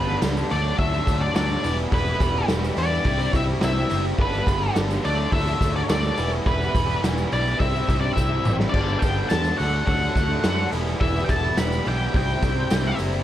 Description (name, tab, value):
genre	indie rock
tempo	106 BPM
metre	4/4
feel	straight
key	unclear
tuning	A4 = 438 Hz
part	octave-fuzz lead guitar	melody	0.0-13.0 s	B4 to B5	-27 LUFS	left 1 dB	distortion
part	bell-like tine electric piano	second line	0.0-13.0 s	B3 to B4	-35 LUFS	left 6 dB	phaser
part	crunchy overdriven guitar	riff	0.0-13.2 s	G2 to E4	-30 LUFS	right 8 dB	ensemble chorus, digital delay
part	overdriven electric guitar	riff	0.0-13.2 s	G2 to E4	-30 LUFS	left 7 dB	spring reverb
part	fingered electric bass	bass	0.0-13.2 s	E1 to F#2	-26 LUFS	equal	none
part	raw garage drum kit	drums	0.2-13.1 s	crash cymbal, hi-hat, kick drum, snare drum, toms	-24 LUFS	equal	none
part	tambourine	percussion	0.2-13.2 s	none	-44 LUFS	right 8 dB	none
part	soft string machine	sustained chords	10.0-13.2 s	G4 to D6	-39 LUFS	equal	none
room	little or no reverb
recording	dark, warm production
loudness	-20 LUFS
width	side -12 dB against mid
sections	0.0-13.2 A section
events	drum fill 8.2-8.7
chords	0.5 D; 1.6 Em; 3.1 C; 4.2 G; 5.0 D; 6.2 Em; 7.6 C; 8.7 Gadd9; 9.6 D; 10.7 Em7; 12.1 Cadd9